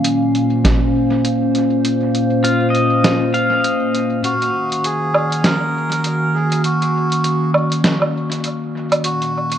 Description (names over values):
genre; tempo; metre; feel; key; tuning
ambient dub; 100 BPM; 4/4; swing 59% on 16ths; unclear; A4 = 440 Hz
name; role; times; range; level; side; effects
warbly tape-like pad; sustained chords; 0.0-9.6 s; Bb2 to F5; -17 LUFS; equal; chorus, built-in reverb
lo-fi sampler-style drum kit; drums; 0.0-9.6 s; hi-hat, snare drum, woodblock; -19 LUFS; right 1 dB; dub echo
electronic kick drum; drums; 0.6-0.8 s; none; -17 LUFS; right 1 dB; overdrive
pedal steel guitar; arpeggios; 2.4-6.8 s; F4 to F5; -21 LUFS; left 1 dB; low-pass filter, tape echo
melodica; melody; 4.2-9.6 s; Gb4 to Bb4; -21 LUFS; right 1 dB; dub echo
room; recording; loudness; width
moderate echo chamber reverb, RT60 2.1 s; dark, warm production, nothing above 10.3 kHz; -15 LUFS; side -9 dB against mid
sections
0.0-4.2 A section; 4.2-9.6 B section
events
kick drops out 3.0-4.2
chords
0.0 Bbmadd9; 4.2 Ebm7; 9.0 Bbm